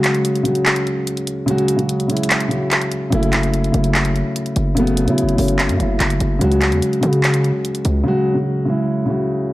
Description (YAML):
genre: hip hop, trap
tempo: 146 BPM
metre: 4/4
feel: half-time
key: unclear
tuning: A4 = 443 Hz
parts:
  - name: dark grand piano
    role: accompaniment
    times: 0.0-9.5 s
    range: C#3 to F#4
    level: -17 LUFS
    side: equal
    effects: none
  - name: trap drum kit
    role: drums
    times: 0.0-7.9 s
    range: handclaps, hi-hat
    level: -21 LUFS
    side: equal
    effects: none
  - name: distorted 808-style bass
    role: bass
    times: 3.1-8.0 s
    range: F#1 to C#3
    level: -18 LUFS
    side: equal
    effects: distortion
room: light reverb, digital ambience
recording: dark, warm production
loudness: -15 LUFS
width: side -17 dB against mid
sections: 0.0-9.5 A section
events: break 0.0-3.1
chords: 0.0 C#sus4; 3.1 F#m7; 6.4 C#sus4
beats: 0.25 0.66 1.07 | 1.48 1.89 2.30 2.71 | 3.12 3.54 3.95 4.36 | 4.77 5.18 5.59 6.00 | 6.41 6.82 7.24 7.65 | 8.06 8.47 8.88 9.29